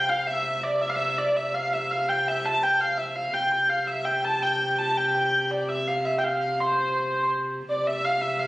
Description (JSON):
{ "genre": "medieval", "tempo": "167 BPM", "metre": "3/4", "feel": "straight", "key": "C major", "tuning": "A4 = 441 Hz", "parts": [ { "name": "dark hurdy-gurdy", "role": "melody", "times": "0.0-8.5 s", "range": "C5 to A5", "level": "-23 LUFS", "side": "equal", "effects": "none" }, { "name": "dark viola da gamba", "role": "drone", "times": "0.0-8.5 s", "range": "C3", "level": "-33 LUFS", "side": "equal", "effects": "none" } ], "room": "wet recital hall reverb, RT60 1.3 s", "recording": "recorded on a phone in the room, studio reverb, compression", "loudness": "-22 LUFS", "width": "side -18 dB against mid", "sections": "0.0-7.7 A section", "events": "none", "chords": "none", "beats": "| 0.10 0.47 0.83 | 1.19 1.55 1.92 | 2.28 2.64 3.00 | 3.36 3.72 4.08 | 4.44 4.80 5.16 | 5.52 5.88 6.24 | 6.60 6.96 7.31 | 7.67 8.03 8.38" }